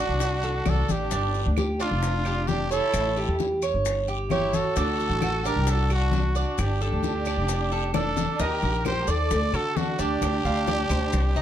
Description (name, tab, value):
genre	latin, Cuban son and guajira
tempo	132 BPM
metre	4/4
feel	straight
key	G minor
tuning	A4 = 440 Hz
part	growling trumpet	melody	0.0-11.4 s	F4 to D5	-28 LUFS	right 1 dB	plate reverb
part	rich chamber violin section	second line	0.0-11.4 s	D4 to A4	-32 LUFS	left 1 dB	none
part	Cuban tres	arpeggios	0.0-11.4 s	D4 to D5	-29 LUFS	right 4 dB	none
part	upright bass	bass	0.0-11.4 s	F1 to D3	-26 LUFS	equal	none
part	bongos	percussion	0.2-11.4 s	none	-36 LUFS	left 7 dB	none
part	congas	percussion	0.2-11.4 s	none	-32 LUFS	left 4 dB	none
part	guiro	percussion	0.2-11.4 s	none	-42 LUFS	left 8 dB	none
part	maracas	percussion	0.2-11.4 s	none	-40 LUFS	left 8 dB	none
part	claves	percussion	0.7-11.1 s	none	-41 LUFS	right 2 dB	none
room	moderate studio reverb, RT60 0.8 s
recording	dark, warm production, faint mains hum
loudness	-22 LUFS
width	side -10 dB against mid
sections	0.0-8.4 A section; 8.4-11.4 B section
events	drum fill 7.9-8.4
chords	0.0 D; 1.1 G5; 2.9 A7; 4.8 D7; 6.6 Gsus2; 8.4 Eb; 9.3 D5; 10.2 G5/D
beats	0.21 0.66 | 1.12 1.57 2.03 2.48 | 2.94 3.40 3.85 4.31 | 4.76 5.22 5.67 6.13 | 6.58 7.04 7.49 7.95 | 8.40 8.86 9.31 9.77 | 10.22 10.68 11.14